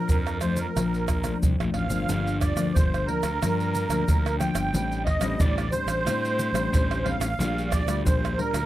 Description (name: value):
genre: samba and choro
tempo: 90 BPM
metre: 4/4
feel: straight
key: G minor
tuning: A4 = 440 Hz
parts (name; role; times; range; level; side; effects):
- musette accordion; melody; 0.0-8.7 s; Bb4 to G5; -29 LUFS; right 3 dB; none
- nylon-string guitar; accompaniment; 0.0-8.7 s; F2 to F4; -29 LUFS; left 4 dB; none
- fuzz fingered electric bass; bass; 0.1-8.7 s; G1 to A2; -29 LUFS; equal; overdrive
- tube shaker, surdo, pandeiro and tamborim; percussion; 0.1-8.7 s; none; -26 LUFS; right 1 dB; none
room: little or no reverb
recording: dry, close 1970s-style studio recording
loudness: -22 LUFS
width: side -14 dB against mid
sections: 0.0-2.1 A section; 2.1-8.7 B section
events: none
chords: 0.0 Bbmaj7; 2.1 Gm7; 4.7 D7sus4/A; 7.4 Gm7/Bb